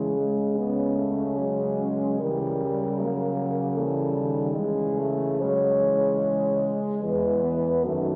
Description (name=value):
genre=classical, lyrical piece for horn quartet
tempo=68-78 BPM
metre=3/4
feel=rubato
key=C# minor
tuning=A4 = 440 Hz
part: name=dark French horn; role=melody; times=0.0-8.2 s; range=C#4 to C#5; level=-29 LUFS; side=equal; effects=none
part: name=warm French horn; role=second line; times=0.0-8.2 s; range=G3 to B3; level=-32 LUFS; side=equal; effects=none
part: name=dark French horn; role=accompaniment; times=0.0-8.2 s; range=D#3 to G#3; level=-34 LUFS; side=equal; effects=none
part: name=mellow French horn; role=bass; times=0.0-8.2 s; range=E2 to C#3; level=-32 LUFS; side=equal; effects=none
room=wet concert hall reverb, RT60 2.0 s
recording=none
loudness=-25 LUFS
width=mono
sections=0.0-8.2 A section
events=none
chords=0.0 C#5; 2.2 C#dim7; 4.6 C#m; 7.0 E